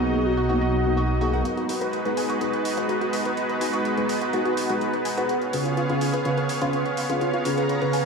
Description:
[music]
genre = progressive house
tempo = 125 BPM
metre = 4/4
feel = straight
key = G# dorian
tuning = A4 = 444 Hz
[part]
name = warm velvety synth lead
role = melody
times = 0.0-0.7 s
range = F#4 to G#4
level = -30 LUFS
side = left 2 dB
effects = chorus, tape echo
[part]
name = supersaw pad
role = sustained chords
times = 0.0-8.1 s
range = F#3 to A#5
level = -26 LUFS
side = right 1 dB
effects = vintage 12-bit sampler grit
[part]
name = deep mellow chord stab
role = stabs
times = 0.0-8.0 s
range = G#2 to B4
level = -26 LUFS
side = equal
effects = chorus, phaser, tape echo
[part]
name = fat analog bass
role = bass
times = 0.0-1.4 s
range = B1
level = -25 LUFS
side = right 1 dB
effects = none
[part]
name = glassy wavetable pluck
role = arpeggios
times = 0.4-8.0 s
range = E#4 to G#5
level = -29 LUFS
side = left 1 dB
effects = chorus, tape echo
[part]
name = electronic hi-hat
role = drums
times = 1.5-8.0 s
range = none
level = -36 LUFS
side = right 2 dB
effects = overdrive, high-pass filter on hats, high-pass filter on room
[sound]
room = wet lush hall reverb, RT60 1.9 s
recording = dreamy mix soaked in reverb, high-pass filter, studio reverb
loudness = -22 LUFS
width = side -4 dB against mid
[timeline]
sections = 0.0-1.5 A section; 1.5-8.1 B section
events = filter sweep on synth arpeggio sound 0.0-1.5; filter sweep on synth stab 0.0-1.5, 1.5-8.1; build-up 1.5-8.1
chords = 0.0 Bmaj7; 1.5 G#m7; 5.3 C#7

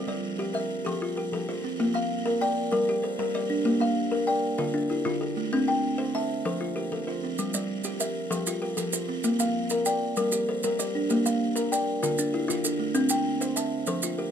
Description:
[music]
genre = southern african traditional, mbira-style interlocking cycle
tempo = 129 BPM (dotted quarters)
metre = 12/8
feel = straight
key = G dorian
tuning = A4 = 440 Hz
[part]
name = buzzing kalimba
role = arpeggios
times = 0.0-14.3 s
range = D3 to E5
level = -29 LUFS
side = right 4 dB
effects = none
[part]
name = kalimba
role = arpeggios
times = 0.0-14.3 s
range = D3 to A5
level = -27 LUFS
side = left 3 dB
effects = none
[part]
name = maracas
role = percussion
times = 7.4-14.2 s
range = none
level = -31 LUFS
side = right 6 dB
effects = none
[sound]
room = little or no reverb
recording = close, detailed microphones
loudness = -25 LUFS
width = side -8 dB against mid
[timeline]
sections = 0.0-14.3 A section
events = none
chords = 0.0 Gm; 0.9 F; 1.8 Bb; 2.7 Gm; 3.7 Bb; 4.6 Dm; 5.5 C; 6.4 F; 7.4 Gm; 8.3 F; 9.2 Bb; 10.2 Gm; 11.1 Bb; 12.0 Dm; 13.0 C

